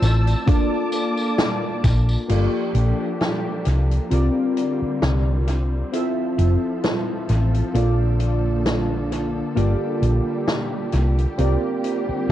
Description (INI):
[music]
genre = vaporwave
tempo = 66 BPM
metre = 4/4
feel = swing 55% on 16ths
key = unclear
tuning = A4 = 440 Hz
[part]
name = warbly lo-fi synth keys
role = accompaniment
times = 0.0-12.3 s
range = A3 to E5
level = -24 LUFS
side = equal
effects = wide subtle chorus, tape echo
[part]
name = muted studio string section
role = sustained chords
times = 0.0-12.3 s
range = D3 to E6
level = -29 LUFS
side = equal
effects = vintage 12-bit sampler grit
[part]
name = hollow-body short-scale fingered electric bass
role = bass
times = 0.0-12.3 s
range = F1 to C2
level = -19 LUFS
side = equal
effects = none
[part]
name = swinging big-band drum kit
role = drums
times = 0.0-12.3 s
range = crash cymbal, hi-hat, snare drum, tambourine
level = -27 LUFS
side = equal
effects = vintage 12-bit sampler grit, tape echo
[part]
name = electronic kick drum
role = drums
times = 0.5-2.0 s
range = none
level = -18 LUFS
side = equal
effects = overdrive, vintage 12-bit sampler grit
[sound]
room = light reverb, small room ambience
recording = echo-heavy mix, cassette tape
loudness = -18 LUFS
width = side -12 dB against mid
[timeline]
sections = 0.0-2.3 A section; 2.3-12.3 B section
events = none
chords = 0.5 Bbmaj7; 2.3 Gm9; 4.1 C9sus4; 5.9 Fmaj7; 7.8 Bbmaj7; 9.6 Gm9; 11.4 C9sus4